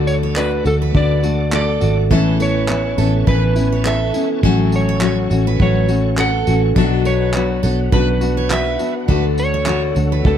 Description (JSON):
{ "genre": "acoustic pop", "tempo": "103 BPM", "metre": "4/4", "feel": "swing 55% on 16ths", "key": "unclear", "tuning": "A4 = 440 Hz", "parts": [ { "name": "dark upright piano", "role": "accompaniment", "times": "0.0-10.4 s", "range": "A3 to A5", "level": "-28 LUFS", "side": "left 2 dB", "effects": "none" }, { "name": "nylon-string guitar", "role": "accompaniment", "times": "0.0-10.4 s", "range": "A2 to F#4", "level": "-20 LUFS", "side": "left 7 dB", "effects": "none" }, { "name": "bright tonewheel organ", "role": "sustained chords", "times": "0.0-10.4 s", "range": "A4 to D6", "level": "-32 LUFS", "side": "right 2 dB", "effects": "chorus vibrato, fast rotary speaker" }, { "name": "vintage muted fingered electric bass", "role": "bass", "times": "0.0-10.4 s", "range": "G#1 to D2", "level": "-18 LUFS", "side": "right 1 dB", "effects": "none" }, { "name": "electric slide guitar", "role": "melody", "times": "0.1-10.4 s", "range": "A4 to F#5", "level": "-22 LUFS", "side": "right 2 dB", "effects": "none" }, { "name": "cloth-damped thuddy drum kit", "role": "drums", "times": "0.1-10.4 s", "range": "handclaps, kick drum, tambourine", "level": "-20 LUFS", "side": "right 1 dB", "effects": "none" }, { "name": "picked steel-string acoustic guitar", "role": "arpeggios", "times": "0.2-10.4 s", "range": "A4 to D5", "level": "-25 LUFS", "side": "right 11 dB", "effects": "none" } ], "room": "little or no reverb", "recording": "none", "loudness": "-14 LUFS", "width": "side -9 dB against mid", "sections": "0.0-10.4 A section", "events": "none", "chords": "0.0 D; 2.1 Aadd9; 4.4 F#m/A; 6.8 Bm; 9.1 D" }